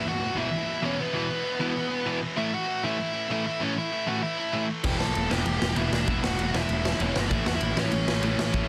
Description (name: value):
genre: punk rock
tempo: 194 BPM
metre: 4/4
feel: straight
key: unclear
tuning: A4 = 441 Hz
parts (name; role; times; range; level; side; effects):
- bluesy overdriven lead guitar; melody; 0.0-8.7 s; B3 to A5; -32 LUFS; equal; distortion, tape echo
- cranked stack guitar; riff; 0.0-8.7 s; E2 to A3; -35 LUFS; equal; overdrive
- distorted electric guitar; riff; 0.0-8.7 s; E2 to A3; -37 LUFS; equal; distortion
- distorted electric guitar; riff; 0.0-8.7 s; E2 to A3; -36 LUFS; equal; overdrive
- fuzz picked electric bass; bass; 4.8-8.7 s; E1 to E2; -32 LUFS; equal; overdrive
- raw garage drum kit; drums; 4.8-8.6 s; crash cymbal, kick drum, ride cymbal, snare drum; -31 LUFS; equal; none
room: little or no reverb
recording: dense, heavily limited modern master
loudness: -27 LUFS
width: mono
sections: 0.0-8.7 A section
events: none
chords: 0.0 E5; 2.4 A5; 4.8 Em; 7.3 A